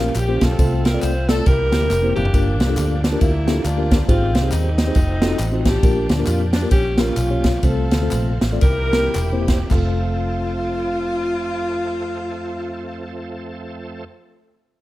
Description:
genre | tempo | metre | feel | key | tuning
uptempo gospel | 104-138 BPM | 4/4 | swing 60% on 8ths | F major | A4 = 440 Hz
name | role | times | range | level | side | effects
warm saxophone section | melody | 0.0-14.0 s | G3 to C5 | -24 LUFS | left 1 dB | none
mellow tine electric piano | accompaniment | 0.0-14.1 s | F2 to D5 | -25 LUFS | left 1 dB | medium stereo tremolo
bright tonewheel organ | sustained chords | 0.0-14.0 s | Eb3 to A4 | -33 LUFS | right 3 dB | slow rotary speaker, overdrive, chorus vibrato
vintage muted fingered electric bass | bass | 0.0-14.0 s | E1 to F2 | -21 LUFS | equal | none
swinging big-band drum kit | drums | 0.1-9.9 s | crash cymbal, kick drum, ride cymbal, snare drum, toms | -20 LUFS | equal | none
handclaps and tambourine | percussion | 0.2-10.0 s | none | -37 LUFS | left 3 dB | none
room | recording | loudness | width
light reverb, small room reverb | rough home demo mix | -16 LUFS | side -16 dB against mid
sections
0.0-2.3 A section; 2.3-9.7 B section; 9.7-14.3 C section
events
drum fill 1.9-2.3; slowing down 5.8-9.7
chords
0.0 Bbm6; 0.6 F/C; 1.5 C7; 2.3 Gm7; 4.1 Abmaj7; 5.0 F7b9; 5.8 Bb6; 6.7 Bbm6; 7.6 F/C; 8.6 C7; 9.7 F

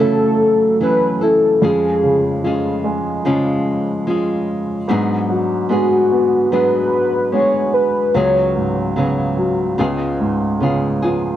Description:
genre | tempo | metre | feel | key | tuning
pop ballad | 74 BPM | 4/4 | straight | unclear | A4 = 440 Hz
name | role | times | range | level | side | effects
warm velvety synth lead | melody | 0.0-9.0 s | F#4 to C#5 | -16 LUFS | equal | chorus, cassette tape
warm baby grand piano | accompaniment | 0.0-11.4 s | C#2 to B3 | -19 LUFS | right 2 dB | cassette tape
nylon-string guitar | arpeggios | 0.0-11.4 s | G#2 to A4 | -21 LUFS | left 3 dB | cassette tape
room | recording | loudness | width
light reverb | home recording on cassette | -14 LUFS | side -12 dB against mid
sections
0.0-11.4 A section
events
none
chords
0.0 F#m7; 1.6 C#/E#; 4.9 G#m7b5; 8.2 C#7sus4; 9.8 C#7

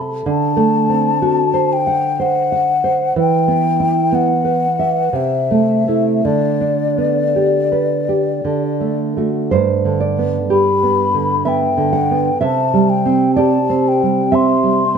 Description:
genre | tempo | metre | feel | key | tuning
romantic duo for flute and classical guitar | 52-65 BPM | 3/4 | rubato | G major | A4 = 440 Hz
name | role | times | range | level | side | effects
nylon-string guitar | accompaniment | 0.0-15.0 s | G2 to F#5 | -15 LUFS | right 3 dB | none
mellow hollow concert flute | melody | 0.3-15.0 s | D5 to C6 | -18 LUFS | left 6 dB | slapback echo
room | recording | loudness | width
moderate recital hall reverb, RT60 1.5 s | close, detailed microphones | -13 LUFS | side -6 dB against mid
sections
0.0-9.5 A section; 9.5-15.0 A section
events
none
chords
0.3 D7; 3.2 Em; 5.2 Am/C; 6.3 G/D; 8.5 D; 9.5 G; 12.4 C

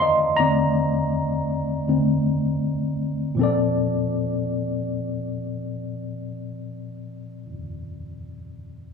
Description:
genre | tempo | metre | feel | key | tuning
R&B | 80 BPM | 4/4 | swing 61% on 16ths | Bb major | A4 = 440 Hz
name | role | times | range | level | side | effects
tine electric piano | accompaniment | 0.0-8.9 s | Bb2 to D6 | -22 LUFS | left 2 dB | overdrive, fast stereo tremolo, plate reverb
room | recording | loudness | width
moderate studio reverb, RT60 0.7 s | none | -21 LUFS | side -5 dB against mid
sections
0.0-3.4 A section; 3.4-6.4 B section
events
tine electric piano solo 0.0-3.4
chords
0.0 Bbmaj7

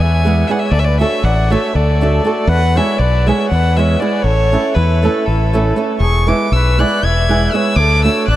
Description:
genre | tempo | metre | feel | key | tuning
balkan folk, Balkan wedding band | 238 BPM (eighths) | 7/8 | straight | unclear | A4 = 440 Hz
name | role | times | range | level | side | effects
rich violin | melody | 0.0-8.4 s | A4 to G#6 | -18 LUFS | equal | diffuse ambient delay
dark trumpet | second line | 0.0-8.4 s | E4 to E5 | -21 LUFS | left 3 dB | diffuse ambient delay
fingered electric bass | bass | 0.0-8.4 s | E1 to E2 | -14 LUFS | equal | none
flamenco guitar | accompaniment | 0.2-8.3 s | G#3 to A4 | -18 LUFS | right 4 dB | none
room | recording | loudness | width
moderate huge ambient reverb, RT60 7.7 s | dreamy mix soaked in reverb | -12 LUFS | side -14 dB against mid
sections
0.0-6.0 A section; 6.0-8.4 A section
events
none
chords
0.0 E; 0.7 D; 2.5 E; 4.2 A; 6.0 E; 7.8 D

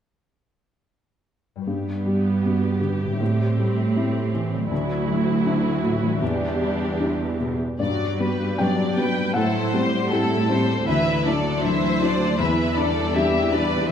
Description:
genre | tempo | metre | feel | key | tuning
cinematic, emotional film score for orchestra | 79 BPM | 4/4 | rubato | unclear | A4 = 440 Hz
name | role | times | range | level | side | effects
concert harp | arpeggios | 1.6-13.9 s | G2 to D5 | -30 LUFS | left 8 dB | none
felt-muted upright piano | accompaniment | 1.7-13.9 s | D2 to G5 | -24 LUFS | left 2 dB | none
warm studio viola section | accompaniment | 1.7-13.9 s | E3 to G5 | -28 LUFS | right 3 dB | none
warm studio cello section | bass | 1.7-13.9 s | D2 to A2 | -25 LUFS | right 4 dB | none
rich studio violin section | melody | 7.8-13.9 s | A4 to E5 | -27 LUFS | left 3 dB | none
rich studio violin section | second line | 9.4-13.9 s | G4 to C5 | -27 LUFS | left 2 dB | none
room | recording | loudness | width
wet recital hall reverb, RT60 1.4 s | none | -20 LUFS | side -8 dB against mid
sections
1.7-7.8 A section; 7.8-13.9 B section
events
none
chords
1.7 Gmaj7; 3.2 Am7; 4.7 Dadd9; 6.2 Em7; 7.8 Gmaj7; 9.4 Am7; 10.9 Dadd9; 12.4 Em7

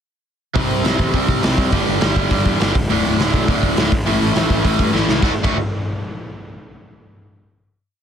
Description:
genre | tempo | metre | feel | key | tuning
punk rock | 206 BPM | 4/4 | straight | unclear | A4 = 436 Hz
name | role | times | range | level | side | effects
distorted electric guitar | riff | 0.5-5.6 s | D2 to F#4 | -21 LUFS | left 12 dB | distortion
overdriven semi-hollow guitar | riff | 0.5-5.6 s | D2 to F#4 | -21 LUFS | right 14 dB | none
fuzz picked electric bass | bass | 0.6-5.6 s | D1 to G2 | -23 LUFS | equal | overdrive
raw garage drum kit | drums | 0.6-5.5 s | crash cymbal, hi-hat, kick drum, snare drum | -19 LUFS | equal | none
room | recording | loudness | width
little or no reverb | dense, heavily limited modern master | -15 LUFS | side -8 dB against mid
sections
0.6-5.2 verse; 5.2-6.4 final chord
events
drum fill 4.9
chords
0.6 C5; 1.7 G5; 2.8 D5; 3.9 A5; 5.2 D

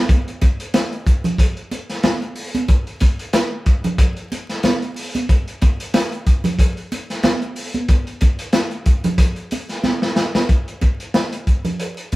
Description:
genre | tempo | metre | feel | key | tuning
funk | 92 BPM | 4/4 | swing 56% on 16ths | none | none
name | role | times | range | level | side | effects
crunchy breakbeat drum kit | drums | 0.1-12.2 s | hi-hat, kick drum, snare drum | -17 LUFS | equal | none
congas | percussion | 0.4-12.2 s | none | -24 LUFS | right 2 dB | none
room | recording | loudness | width
light reverb | band playing live in one room, vinyl crackle | -16 LUFS | side -18 dB against mid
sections
0.0-10.5 A section; 10.5-12.2 B section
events
drum fill 9.8-10.5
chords
none

